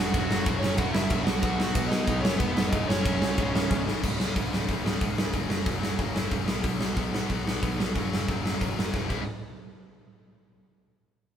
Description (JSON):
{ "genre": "punk rock", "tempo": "184 BPM", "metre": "4/4", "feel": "straight", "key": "unclear", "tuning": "A4 = 440 Hz", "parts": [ { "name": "biting lead guitar", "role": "melody", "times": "0.0-3.8 s", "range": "B3 to F#5", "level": "-31 LUFS", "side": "right 2 dB", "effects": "overdrive" }, { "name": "distorted electric guitar", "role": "riff", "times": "0.0-9.2 s", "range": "C#2 to E4", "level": "-33 LUFS", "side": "left 7 dB", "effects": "overdrive" }, { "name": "overdriven electric guitar", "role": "riff", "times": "0.0-9.2 s", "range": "C#2 to E4", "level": "-36 LUFS", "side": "right 5 dB", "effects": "none" }, { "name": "overdriven electric guitar", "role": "riff", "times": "0.0-4.0 s", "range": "C#2 to B3", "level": "-35 LUFS", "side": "right 1 dB", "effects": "none" }, { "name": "fuzz picked electric bass", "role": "bass", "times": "0.0-9.2 s", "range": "C#1 to B2", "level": "-33 LUFS", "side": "equal", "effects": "overdrive" }, { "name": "big rock drum kit", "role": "drums", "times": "0.1-9.2 s", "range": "crash cymbal, hi-hat, kick drum, snare drum", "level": "-27 LUFS", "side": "equal", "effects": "none" } ], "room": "light reverb", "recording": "band playing live in one room", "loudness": "-24 LUFS", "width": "side -9 dB against mid", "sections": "0.0-4.0 A section; 4.0-9.3 B section; 9.3-10.6 C section", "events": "drum fill 3.7-4.0, 8.9-9.3", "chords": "0.1 F#5; 1.3 B; 2.7 F#5; 3.4 C#5; 5.3 F#5; 6.5 B5; 7.9 F#5; 9.1 C#m; 9.3 N.C." }